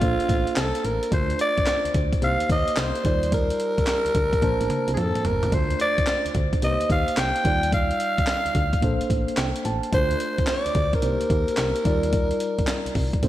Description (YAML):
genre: R&B, new jack swing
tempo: 109 BPM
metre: 4/4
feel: swing 66% on 16ths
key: unclear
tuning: A4 = 439 Hz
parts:
  - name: growling alto saxophone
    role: melody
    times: 0.0-13.3 s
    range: F4 to G5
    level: -24 LUFS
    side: equal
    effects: slapback echo, ping-pong delay
  - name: mellow tine electric piano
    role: accompaniment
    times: 0.0-13.3 s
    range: G3 to A5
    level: -28 LUFS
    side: right 1 dB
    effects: medium stereo tremolo, slapback echo
  - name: solid FM bass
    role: bass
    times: 0.0-13.3 s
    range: G1 to F2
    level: -27 LUFS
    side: equal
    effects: none
  - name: breakbeat sampler-style drum kit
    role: drums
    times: 0.0-13.3 s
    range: handclaps, hi-hat, kick drum, snare drum, toms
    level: -25 LUFS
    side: equal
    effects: none
room: moderate concert hall reverb, RT60 1.9 s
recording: big arena sound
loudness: -20 LUFS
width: side -14 dB against mid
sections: 0.0-13.3 A section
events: drum fill 4.4-5.5; tine electric piano fill 9.1-9.9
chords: 0.0 Bbmaj9; 1.1 Dm7; 2.2 Cm7; 3.0 Ebmaj9; 4.4 Bbmaj9; 5.5 Dm7; 6.6 Cm7; 7.5 Ebmaj9; 8.8 Bbmaj9; 9.9 Dm7; 11.0 Cm7; 11.9 Ebmaj9